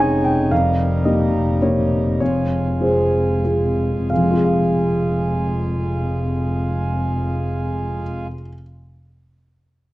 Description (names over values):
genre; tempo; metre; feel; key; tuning
neoclassical piano and strings; 91-114 BPM; 3/4; rubato; F minor; A4 = 436 Hz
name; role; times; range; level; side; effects
dark grand piano; accompaniment; 0.0-8.6 s; F2 to Ab5; -19 LUFS; equal; none
pedal harmonium; sustained chords; 0.0-8.3 s; G3 to Db5; -28 LUFS; right 3 dB; none
warm double bass; bass; 0.0-8.3 s; F1; -22 LUFS; equal; none
room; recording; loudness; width
light reverb; worn, warbling old tape, cassette tape, warbly pitch drift; -17 LUFS; side -17 dB against mid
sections
0.0-4.1 A section; 4.1-8.0 B section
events
slowing down 0.0-4.1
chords
0.0 Dbadd9/F; 0.5 Eb/F; 2.2 Fm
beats
| 0.51 1.05 1.61 | 2.20 2.81 3.44 | 4.10 4.75 5.40 | 6.05 6.71 7.35